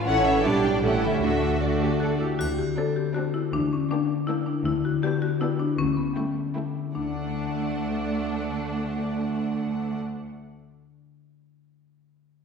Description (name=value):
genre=cinematic, playful, whimsical film cue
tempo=158 BPM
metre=3/4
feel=straight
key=D major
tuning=A4 = 440 Hz
part: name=concert harp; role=arpeggios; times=0.0-10.8 s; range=A2 to D5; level=-30 LUFS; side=left 8 dB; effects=none
part: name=rich studio cello section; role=bass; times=0.0-10.0 s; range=D2 to A4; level=-31 LUFS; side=right 2 dB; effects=none
part: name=warm studio violin section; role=melody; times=0.1-10.0 s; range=D5 to A5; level=-32 LUFS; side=left 3 dB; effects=none
part: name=clear studio violin section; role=second line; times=0.1-10.0 s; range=D4 to D5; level=-31 LUFS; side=equal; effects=none
part: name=rich studio viola section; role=accompaniment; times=0.1-10.0 s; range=E3 to E4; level=-30 LUFS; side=right 4 dB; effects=none
part: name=rich studio double bass section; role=bass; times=0.1-2.2 s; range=A1 to D2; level=-30 LUFS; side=right 3 dB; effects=none
part: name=buzzing marimba with hard mallets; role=melody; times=2.0-10.7 s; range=B3 to A4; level=-28 LUFS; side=left 3 dB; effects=none
part: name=triangle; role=percussion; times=2.4-3.1 s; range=none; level=-45 LUFS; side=right 3 dB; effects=none
room=wet scoring stage reverb, RT60 1.4 s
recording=heard from further back in the room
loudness=-23 LUFS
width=side -6 dB against mid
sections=0.0-2.4 A section; 2.4-6.9 B section; 6.9-9.2 C section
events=none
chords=0.1 A; 0.4 G/B; 0.8 A7; 1.2 D; 2.4 D7; 3.5 Gm/D; 4.7 G/D; 5.8 A7/D; 6.9 D